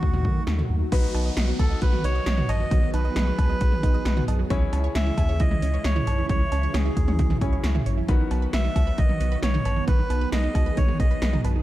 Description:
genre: synth-pop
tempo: 134 BPM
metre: 4/4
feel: straight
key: unclear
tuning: A4 = 440 Hz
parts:
  - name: melodica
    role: melody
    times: 0.0-11.4 s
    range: F#4 to E5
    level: -31 LUFS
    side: right 1 dB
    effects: none
  - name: bright concert grand piano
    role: accompaniment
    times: 0.0-11.6 s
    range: D#3 to C#5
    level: -35 LUFS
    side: left 5 dB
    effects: none
  - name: soft string machine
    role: sustained chords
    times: 0.0-11.6 s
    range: C#3 to G#4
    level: -31 LUFS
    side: equal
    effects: phaser, ensemble chorus
  - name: round analog bass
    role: bass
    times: 0.0-11.6 s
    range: A1 to D#3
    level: -25 LUFS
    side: equal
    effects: none
  - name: 80s electronic pad drums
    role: drums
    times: 0.0-11.6 s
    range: cowbell, crash cymbal, hi-hat, kick drum, snare drum, toms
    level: -24 LUFS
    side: equal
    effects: gated reverb on snare and toms
  - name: analog pluck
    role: arpeggios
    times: 0.9-11.6 s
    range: D#3 to D#5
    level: -34 LUFS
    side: right 10 dB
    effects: chorus, tape echo
  - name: downlifter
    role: sound effects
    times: 0.9-4.5 s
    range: none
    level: -40 LUFS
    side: equal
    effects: none
room: little or no reverb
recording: dark, warm production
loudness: -20 LUFS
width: side -15 dB against mid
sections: 0.9-11.6 A section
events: none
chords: 0.0 D#dim; 0.9 B; 4.5 C#m; 8.1 B

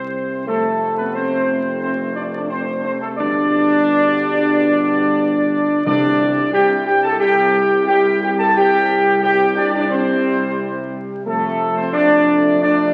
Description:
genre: classical, ceremonial fanfare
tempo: 89 BPM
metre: 4/4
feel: straight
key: unclear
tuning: A4 = 444 Hz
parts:
  - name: dark trumpet section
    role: melody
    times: 0.0-12.9 s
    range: A4 to A5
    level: -22 LUFS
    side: equal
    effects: none
  - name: mellow French horn section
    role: sustained chords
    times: 0.0-12.9 s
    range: A3 to A4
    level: -20 LUFS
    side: equal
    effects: none
  - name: warm trombone section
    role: sustained chords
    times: 0.0-12.9 s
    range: B2 to A3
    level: -28 LUFS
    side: equal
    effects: none
  - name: mellow tuba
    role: bass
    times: 0.0-12.9 s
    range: F1 to F2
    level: -29 LUFS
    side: equal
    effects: none
  - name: timpani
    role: percussion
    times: 5.9-6.8 s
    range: C3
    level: -30 LUFS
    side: equal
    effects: none
room: wet scoring stage reverb, RT60 2.0 s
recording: very old 78 rpm record, vinyl crackle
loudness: -17 LUFS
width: mono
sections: 0.0-12.9 A section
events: none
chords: 0.5 F; 3.2 G; 5.9 Csus2; 11.3 F6

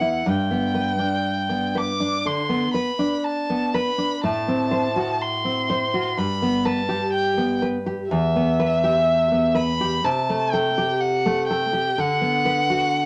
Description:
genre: romantic duo for violin and classical guitar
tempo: 62 BPM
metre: 4/4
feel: rubato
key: unclear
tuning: A4 = 439 Hz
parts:
  - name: rich violin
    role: melody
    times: 0.0-13.1 s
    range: E5 to D6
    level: -25 LUFS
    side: equal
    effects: none
  - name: nylon-string guitar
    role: accompaniment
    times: 0.0-13.1 s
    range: E2 to C5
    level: -25 LUFS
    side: equal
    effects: none
room: moderate studio reverb, RT60 0.6 s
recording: none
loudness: -22 LUFS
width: mono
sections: 0.0-13.1 A section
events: none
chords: 0.3 G; 4.2 F#dim/A; 6.2 G; 8.1 Em; 10.1 Am7/C; 12.0 D6

